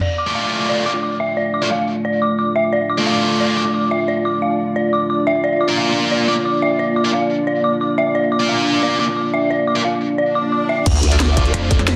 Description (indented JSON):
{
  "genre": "dark technical drum and bass",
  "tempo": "177 BPM",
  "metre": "4/4",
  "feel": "straight",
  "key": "D minor",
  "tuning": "A4 = 439 Hz",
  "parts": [
    { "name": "dark analog pad", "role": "sustained chords", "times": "0.5-12.0 s", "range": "A3 to D5", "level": "-23 LUFS", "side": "equal", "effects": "chorus, sidechain pumping" },
    { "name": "dark detuned synth bell", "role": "arpeggios", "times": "0.0-10.9 s", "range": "D5 to D6", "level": "-22 LUFS", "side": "equal", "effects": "chorus, sidechain pumping, low-pass filter, tape echo" },
    { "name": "drum and bass drum kit", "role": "drums", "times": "0.0-0.1, 10.9-11.9 s", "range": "crash cymbal, hi-hat, snare drum", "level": "-24 LUFS", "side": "equal", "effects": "low-pass filter on hats, low-pass filter on cymbals, low-pass filter on snare, low-pass filter on toms" },
    { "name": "high-gain distorted guitar", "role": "stabs", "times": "0.3-3.6, 5.7-11.8 s", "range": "A3 to D5", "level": "-23 LUFS", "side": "equal", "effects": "distortion, tape echo" },
    { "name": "swell and sub drop", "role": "sound effects", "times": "10.3-12.0 s", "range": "none", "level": "-26 LUFS", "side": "equal", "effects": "none" },
    { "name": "growl bass", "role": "bass", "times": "10.9-11.5 s", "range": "D2", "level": "-18 LUFS", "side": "equal", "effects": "chorus, sidechain pumping" },
    { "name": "electronic kick drum", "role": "drums", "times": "10.9-11.8 s", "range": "none", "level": "-19 LUFS", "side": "equal", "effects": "none" },
    { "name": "pulsing pluck wobble bass", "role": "bass", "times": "11.5-12.0 s", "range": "F2", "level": "-22 LUFS", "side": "equal", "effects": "chorus" }
  ],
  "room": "wet digital room reverb, RT60 1.1 s, digital ambience",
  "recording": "dense, heavily limited modern master",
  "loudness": "-18 LUFS",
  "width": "mono",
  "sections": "0.0-10.9 A section; 10.9-12.0 B section",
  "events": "filter sweep on drum 0.0-10.9; swell 10.3-10.9; drop 10.9-12.0; impact 10.9-12.0",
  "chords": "0.0 Dm; 5.4 Bb; 10.9 Dm"
}